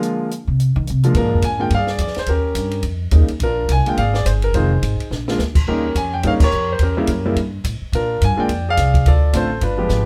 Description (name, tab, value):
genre	jazz piano trio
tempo	212 BPM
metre	4/4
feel	swing 60% on 8ths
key	Bb mixolydian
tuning	A4 = 441 Hz
part	clear concert grand piano	melody	0.0-10.1 s	Db3 to Ab5	-22 LUFS	equal	none
part	compact cocktail drum kit	drums	0.0-10.0 s	crash cymbal, hi-hat, kick drum, ride cymbal, snare drum	-24 LUFS	equal	none
part	upright bass	bass	0.5-10.1 s	F1 to Eb3	-20 LUFS	equal	none
room	moderate studio reverb, RT60 0.6 s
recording	none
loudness	-18 LUFS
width	mono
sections	0.0-1.1 A section; 1.1-10.1 B section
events	upright bass solo 0.0-1.1; drum fill 5.1, 9.9; band accent 6.4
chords	0.0 Bb7; 0.6 F5; 1.1 Bb7; 2.3 Eb7; 3.4 Bb7; 4.5 Fm7; 5.1 Bb; 5.7 Eb7; 6.8 Edim7; 7.9 Bb7; 9.1 Dm7